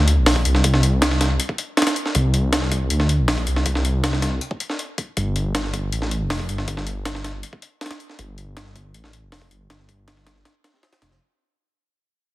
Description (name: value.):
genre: drum and bass, jungle.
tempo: 159 BPM.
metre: 4/4.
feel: straight.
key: unclear.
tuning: A4 = 440 Hz.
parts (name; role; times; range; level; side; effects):
detuned saw bass; bass; 0.0-11.2 s; F1 to D2; -20 LUFS; equal; tube saturation.
breakbeat sampler-style drum kit; drums; 0.1-11.2 s; hi-hat, kick drum, snare drum; -22 LUFS; equal; high-pass filter on snare, high-pass filter on kick, high-pass filter on hats.
room: digital ambience.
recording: heavily compressed radio sound.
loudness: -19 LUFS.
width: side -17 dB against mid.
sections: 0.0-11.2 A section.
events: fade-out 0.0-11.2.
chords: none.